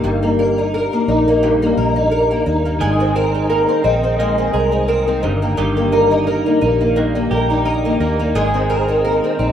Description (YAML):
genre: pop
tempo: 87 BPM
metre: 4/4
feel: swing 55% on 16ths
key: Ab major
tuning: A4 = 439 Hz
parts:
  - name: fingerpicked twelve-string acoustic guitar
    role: accompaniment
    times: 0.0-9.5 s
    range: G2 to Bb4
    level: -15 LUFS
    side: equal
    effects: ensemble chorus
  - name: vintage muted fingered electric bass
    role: bass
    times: 0.0-9.5 s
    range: G1 to Eb2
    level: -21 LUFS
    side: equal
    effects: none
  - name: twelve-string electric guitar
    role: arpeggios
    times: 2.8-9.5 s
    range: Eb3 to Ab4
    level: -25 LUFS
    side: right 4 dB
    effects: ping-pong delay
room: light reverb, studio ambience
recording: rough home demo mix, lossy compression artefacts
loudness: -14 LUFS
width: side -9 dB against mid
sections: 0.0-9.5 A section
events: none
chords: 0.0 Eb/G; 2.8 Abadd9; 5.2 Eb/G; 8.4 Abadd9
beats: | 0.04 0.73 1.42 2.12 | 2.81 3.50 4.20 4.89 | 5.58 6.28 6.97 7.66 | 8.35 9.04